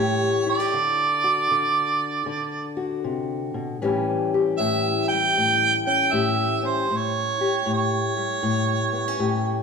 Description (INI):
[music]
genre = acoustic country blues, solo or duo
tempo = 78 BPM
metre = 4/4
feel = swing 66% on 8ths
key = A mixolydian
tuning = A4 = 440 Hz
[part]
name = warm harmonica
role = melody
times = 0.0-9.6 s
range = C5 to G5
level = -22 LUFS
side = right 4 dB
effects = none
[part]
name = fingerpicked old ladder-braced acoustic guitar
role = accompaniment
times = 0.0-9.6 s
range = A2 to G4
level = -24 LUFS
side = left 4 dB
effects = none
[sound]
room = wet recital hall reverb, RT60 1.7 s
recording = recorded in a church or concert hall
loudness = -20 LUFS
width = side -5 dB against mid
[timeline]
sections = 0.0-9.6 A section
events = none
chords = 0.0 A7; 0.7 D7; 3.8 A7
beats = | 0.74 1.51 2.28 3.05 | 3.82 4.59 5.36 6.13 | 6.89 7.67 8.43 9.20